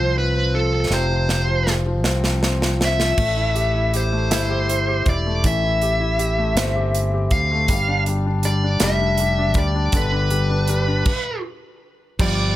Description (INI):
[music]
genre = six-eight pop ballad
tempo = 53 BPM (dotted quarters)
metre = 6/8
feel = straight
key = unclear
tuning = A4 = 440 Hz
[part]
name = smooth overdriven lead guitar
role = melody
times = 0.0-12.6 s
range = A4 to F5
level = -22 LUFS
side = equal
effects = none
[part]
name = clear grand piano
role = accompaniment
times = 0.0-12.6 s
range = C3 to G4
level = -25 LUFS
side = left 3 dB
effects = none
[part]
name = fingered electric bass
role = bass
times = 0.0-12.6 s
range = E1 to D2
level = -21 LUFS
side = equal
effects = none
[part]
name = modern studio drum kit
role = drums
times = 0.9-12.4 s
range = crash cymbal, hi-hat, kick drum, snare drum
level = -23 LUFS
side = right 1 dB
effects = none
[part]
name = fingerpicked steel-string acoustic guitar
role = arpeggios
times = 12.2-12.6 s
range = F3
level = -25 LUFS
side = right 2 dB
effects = none
[sound]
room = small room ambience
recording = none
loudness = -17 LUFS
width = side -14 dB against mid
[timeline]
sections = 0.0-3.2 A section; 3.2-12.2 B section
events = drum fill 0.9-3.2; stop 11.1-12.2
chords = 0.0 F5; 3.2 Am7; 7.7 G7